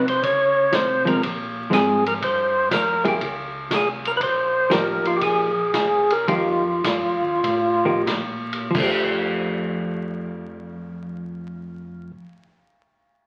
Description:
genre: soul jazz organ trio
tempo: 85-121 BPM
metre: 4/4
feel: swing 68% on 8ths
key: F mixolydian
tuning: A4 = 439 Hz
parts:
  - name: percussive tonewheel organ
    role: melody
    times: 0.0-8.0 s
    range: F4 to Db5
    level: -22 LUFS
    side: equal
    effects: overdrive, slow rotary speaker
  - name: vintage hollow-body jazz guitar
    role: accompaniment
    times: 0.0-12.2 s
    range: F3 to Ab4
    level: -27 LUFS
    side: equal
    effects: none
  - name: mellow tonewheel organ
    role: bass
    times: 0.0-12.1 s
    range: A1 to Db3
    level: -38 LUFS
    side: equal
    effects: slow rotary speaker
  - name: vintage drum kit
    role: drums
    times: 0.1-9.0 s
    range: crash cymbal, hi-hat, kick drum, ride cymbal, snare drum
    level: -28 LUFS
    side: equal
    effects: none
room: wet large studio reverb, RT60 0.9 s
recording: very old 78 rpm record, vinyl crackle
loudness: -21 LUFS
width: mono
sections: 0.0-8.7 A section; 8.7-13.3 B section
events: slowing down 4.2-8.7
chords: 0.2 Dbmaj7; 2.2 Gm7; 3.2 Bbm9 (rootless); 4.2 F9sus4; 8.7 F69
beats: | 0.23 0.73 1.23 1.72 | 2.22 2.71 3.21 3.71 | 4.20 4.70 5.21 5.73 | 6.27 6.84 7.43 8.06 | 8.75 9.46 10.16 10.87 | 11.58

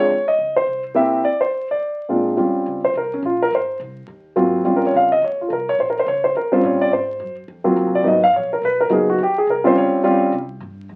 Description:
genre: jazz piano trio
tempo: 211 BPM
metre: 4/4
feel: swing 61% on 8ths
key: Eb mixolydian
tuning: A4 = 441 Hz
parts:
  - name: warm concert grand piano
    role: melody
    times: 0.0-10.3 s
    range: Bb2 to F5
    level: -18 LUFS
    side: equal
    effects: none
  - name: upright bass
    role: bass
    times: 0.0-11.0 s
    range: Ab1 to Bb2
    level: -42 LUFS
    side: equal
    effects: none
room: moderate studio ambience, RT60 0.5 s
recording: very old 78 rpm record, vinyl crackle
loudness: -18 LUFS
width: mono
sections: 0.0-2.4 A section; 2.4-11.0 B section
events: break 1.2-2.4; grand piano solo 2.4-11.0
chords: 0.1 Dbsus2; 0.7 C7; 1.2 N.C.; 1.8 Bb7; 2.4 Eb13; 3.5 Ab13; 4.6 Eb13; 5.8 Bbm; 6.3 Eb13; 6.9 Ab13; 8.0 Abm7; 9.2 Eb13; 10.3 C5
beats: | 0.10 0.38 0.67 0.95 | 1.24 1.52 1.81 2.09 | 2.38 2.66 2.94 3.23 | 3.51 3.79 4.08 4.36 | 4.65 4.93 5.21 5.50 | 5.78 6.06 6.35 6.63 | 6.91 7.20 7.48 7.76 | 8.05 8.33 8.62 8.90 | 9.18 9.47 9.75 10.04 | 10.32 10.60 10.89

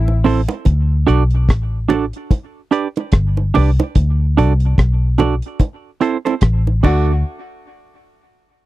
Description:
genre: roots reggae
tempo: 73 BPM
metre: 4/4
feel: swing 59% on 16ths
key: D mixolydian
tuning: A4 = 440 Hz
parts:
  - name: warm horn section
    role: second line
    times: 0.0-0.2, 6.8-7.1 s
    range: D3 to F#4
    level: -27 LUFS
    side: left 5 dB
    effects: tape echo
  - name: vintage muted fingered electric bass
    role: bass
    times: 0.0-7.2 s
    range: G1 to D2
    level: -15 LUFS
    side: left 1 dB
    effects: none
  - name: bongos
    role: percussion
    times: 0.1-7.2 s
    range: none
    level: -22 LUFS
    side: right 6 dB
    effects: none
  - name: semi-hollow electric guitar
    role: accompaniment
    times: 0.2-7.1 s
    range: C4 to D5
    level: -17 LUFS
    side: right 7 dB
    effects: warbly pitch drift, tape echo
  - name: deep reggae drum kit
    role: drums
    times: 0.3-7.1 s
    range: crash cymbal, hi-hat, kick drum, rim click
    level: -12 LUFS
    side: left 1 dB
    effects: none
room: little or no reverb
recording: dry, close 1970s-style studio recording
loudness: -14 LUFS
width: side -16 dB against mid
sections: 0.0-7.2 A section; 7.2-8.7 B section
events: none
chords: 0.0 Am; 0.7 D; 2.3 G; 4.0 D; 5.6 Am; 6.8 D; 7.2 N.C.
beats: | 0.67 1.49 2.31 3.13 | 3.96 4.78 5.60 6.42

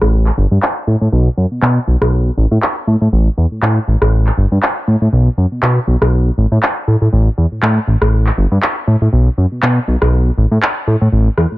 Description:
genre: filtered disco house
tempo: 120 BPM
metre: 4/4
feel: swing 56% on 16ths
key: unclear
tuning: A4 = 440 Hz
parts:
  - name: fat analog bass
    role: bass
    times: 0.0-11.6 s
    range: G1 to B2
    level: -11 LUFS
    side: equal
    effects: low-pass filter
  - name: electronic rim click and handclaps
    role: drums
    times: 0.0-11.5 s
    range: none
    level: -18 LUFS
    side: equal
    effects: low-pass filter on hats, low-pass filter on perc, low-pass filter on snare, low-pass filter on cymbals, low-pass filter on room
room: little or no reverb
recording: none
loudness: -11 LUFS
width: side -18 dB against mid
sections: 0.0-11.6 A section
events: filter sweep on analog synth bass 0.0-11.6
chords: none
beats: 0.12 0.62 | 1.12 1.62 2.12 2.62 | 3.12 3.62 4.12 4.62 | 5.12 5.62 6.12 6.62 | 7.12 7.62 8.12 8.62 | 9.12 9.62 10.12 10.62 | 11.12

